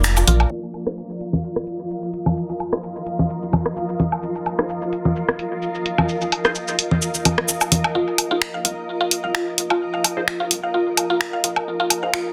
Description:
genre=minimal techno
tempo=129 BPM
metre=4/4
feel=swing 54% on 16ths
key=unclear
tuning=A4 = 439 Hz
part: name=rubbery square bass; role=bass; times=0.0-0.5, 7.9-11.8 s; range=Eb1 to C2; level=-21 LUFS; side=equal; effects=high-pass filter
part: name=punchy analog drum machine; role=drums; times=0.0-12.2 s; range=finger snaps, hi-hat, shaker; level=-22 LUFS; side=equal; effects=overdrive, high-pass filter on perc, high-pass filter on hats, soft clipping on snare, high-pass filter on snare
part: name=flickering grainy texture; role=texture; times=0.0-8.0 s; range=F3 to F4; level=-34 LUFS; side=equal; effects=built-in reverb
part: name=granular cloud pad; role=texture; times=0.0-12.3 s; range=F4 to Eb5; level=-30 LUFS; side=equal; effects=built-in reverb
part: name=mallet-like synth pluck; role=riff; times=0.2-0.3, 8.0-12.2 s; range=F4 to F5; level=-26 LUFS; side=equal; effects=subtle chorus, cassette tape, tape echo
part: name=electronic woodblock, congas and rim click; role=percussion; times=0.2-12.0 s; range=none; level=-24 LUFS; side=equal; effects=overdrive, tape echo
part: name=filtered dub chord stab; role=stabs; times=0.9-12.1 s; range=Eb4 to C5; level=-31 LUFS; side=equal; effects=phaser, ensemble chorus, tape echo
room=moderate studio reverb, RT60 0.6 s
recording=dense, heavily limited modern master, low-pass filter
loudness=-22 LUFS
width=mono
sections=0.5-8.0 A section; 8.0-12.3 B section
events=band accent 0.0; filter sweep on synth stab 0.5-8.0; filter sweep 0.5-8.0; build-up 8.0-12.3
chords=0.0 N.C.; 0.5 F7(no3)

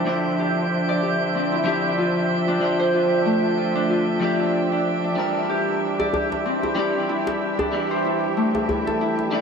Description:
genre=organic downtempo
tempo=94 BPM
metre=4/4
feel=swing 56% on 16ths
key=D minor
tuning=A4 = 441 Hz
part: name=electric guitar at the edge of break-up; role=accompaniment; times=0.0-9.4 s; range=F3 to E5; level=-26 LUFS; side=left 2 dB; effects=vintage 12-bit sampler grit, analog delay
part: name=muted chamber string section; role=sustained chords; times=0.0-9.4 s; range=D3 to E5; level=-27 LUFS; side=right 1 dB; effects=low-pass filter
part: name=Celtic harp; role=arpeggios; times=0.0-9.4 s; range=A3 to D5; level=-23 LUFS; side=equal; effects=low-pass filter, tape echo
part: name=drifting glass-harmonics texture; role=texture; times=0.0-9.4 s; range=G5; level=-30 LUFS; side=right 5 dB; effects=chorus, built-in reverb
part: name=djembe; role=percussion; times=6.0-9.3 s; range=none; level=-27 LUFS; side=left 1 dB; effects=none
room=moderate spring reverb, RT60 2.7 s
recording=echo-heavy mix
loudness=-19 LUFS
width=side -6 dB against mid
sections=0.0-9.4 A section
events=none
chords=0.0 Dm9; 5.2 Em7b5

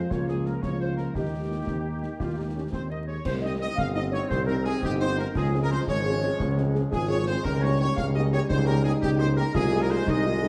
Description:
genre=military-style march for wind band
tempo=114 BPM (dotted quarters)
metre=6/8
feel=straight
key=unclear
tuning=A4 = 440 Hz
part: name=clear trumpet section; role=melody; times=0.0-10.5 s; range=G4 to F5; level=-36 LUFS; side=equal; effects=none
part: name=flute section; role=second line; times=0.0-10.5 s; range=G4 to F5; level=-37 LUFS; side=equal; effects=none
part: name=dark French horn section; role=accompaniment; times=0.0-10.5 s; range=F3 to Ab4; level=-36 LUFS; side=equal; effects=none
part: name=clear trombone section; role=sustained chords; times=0.0-10.5 s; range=Eb3 to F4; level=-38 LUFS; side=equal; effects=none
part: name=mellow tuba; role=bass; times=0.0-10.5 s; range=G1 to Eb2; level=-29 LUFS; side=equal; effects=none
part: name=concert snare drum, concert bass drum and clash cymbals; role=drums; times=0.1-10.5 s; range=none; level=-36 LUFS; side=equal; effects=none
part: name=mellow euphonium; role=second line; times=3.8-10.5 s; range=C4 to F4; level=-34 LUFS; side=equal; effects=none
room=wet recital hall reverb, RT60 1.4 s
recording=dark, warm production, vinyl crackle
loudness=-26 LUFS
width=mono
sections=0.0-3.3 A section; 3.3-10.5 A section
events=none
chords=0.1 Bbm/Db; 1.2 Eb; 3.3 Cm; 5.3 Dbmaj7; 7.4 Eb7/Db; 9.5 Ab/C

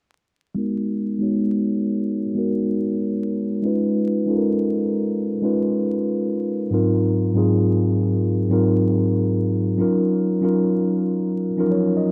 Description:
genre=hip hop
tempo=78 BPM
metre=4/4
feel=swing 65% on 16ths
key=unclear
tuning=A4 = 440 Hz
part: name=mellow tine electric piano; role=accompaniment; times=0.5-12.1 s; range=Ab2 to Eb5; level=-21 LUFS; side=equal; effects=cassette tape, low-pass filter
room=moderate lush hall reverb, RT60 3.0 s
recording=rough home demo mix, vinyl crackle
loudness=-21 LUFS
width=mono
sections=0.6-12.1 A section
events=filter sweep on tine electric piano 0.6-12.1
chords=0.6 Abm7; 3.6 Db9; 6.7 Ab13; 9.8 Ebm9

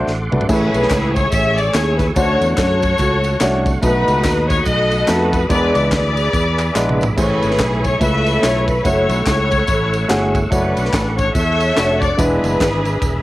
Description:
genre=uptempo gospel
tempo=144 BPM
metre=4/4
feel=swing 60% on 8ths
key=A major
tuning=A4 = 437 Hz
part: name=warm baby grand piano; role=accompaniment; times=0.0-12.8 s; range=A2 to C#5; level=-19 LUFS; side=equal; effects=cassette tape
part: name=tonewheel organ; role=sustained chords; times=0.0-13.2 s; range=A3 to E6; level=-26 LUFS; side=right 2 dB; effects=chorus vibrato, fast rotary speaker, cassette tape
part: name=fingered electric bass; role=bass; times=0.0-13.2 s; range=E1 to F#2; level=-20 LUFS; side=equal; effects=none
part: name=crisp fusion drum kit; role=drums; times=0.1-13.1 s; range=crash cymbal, kick drum, ride cymbal, snare drum, toms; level=-22 LUFS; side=equal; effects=none
part: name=warm studio string section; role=melody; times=0.5-13.2 s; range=D4 to E5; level=-18 LUFS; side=left 1 dB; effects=cassette tape
part: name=tambourine and handclaps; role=percussion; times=0.5-13.1 s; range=none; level=-30 LUFS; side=left 1 dB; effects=none
room=little or no reverb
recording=home recording on cassette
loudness=-14 LUFS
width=side -16 dB against mid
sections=0.5-13.2 A section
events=drum fill 0.1-0.5, 6.8-7.2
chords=0.5 Amaj7; 2.2 Dmaj7; 3.8 B7; 5.5 E7; 7.2 Amaj7; 8.0 C#7alt; 8.8 F#m7; 10.5 Dmaj7/F#; 12.2 E7

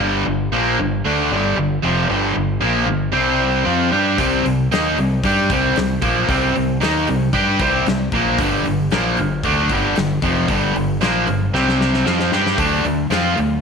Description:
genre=blues rock power trio and southern rock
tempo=114 BPM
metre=4/4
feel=straight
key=unclear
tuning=A4 = 440 Hz
part: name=cranked stack guitar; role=riff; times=0.0-13.6 s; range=F2 to G4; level=-16 LUFS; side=equal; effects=overdrive, spring reverb
part: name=growling fingered electric bass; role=bass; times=0.0-13.6 s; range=F1 to G2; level=-24 LUFS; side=equal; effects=overdrive
part: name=huge arena drum kit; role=drums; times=4.2-13.5 s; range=hi-hat, kick drum, snare drum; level=-25 LUFS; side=left 3 dB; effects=none
room=light reverb, small room ambience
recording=1960s-style stereo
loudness=-15 LUFS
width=side -6 dB against mid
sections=0.0-13.6 A section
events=drum fill 11.5-12.6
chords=0.0 G5; 3.1 C5; 3.7 G5; 4.2 C5; 8.4 G5; 11.5 C5; 12.1 G5; 12.6 D5

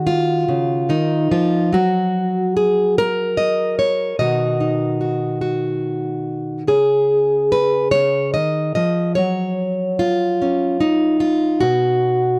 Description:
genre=folk, solo fingerstyle acoustic guitar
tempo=49 BPM (dotted quarters)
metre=6/8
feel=straight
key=unclear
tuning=A4 = 440 Hz
part: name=fingerpicked plugged-in steel-string acoustic guitar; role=solo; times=0.0-12.4 s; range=Cb3 to Eb5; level=-18 LUFS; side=equal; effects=none
room=small room ambience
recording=dry, close 1970s-style studio recording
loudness=-18 LUFS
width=mono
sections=0.0-12.4 A section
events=none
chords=0.0 Ebm9/Db; 1.7 N.C.; 4.2 Cb; 6.7 Db; 9.2 Gb5; 11.6 Cb5

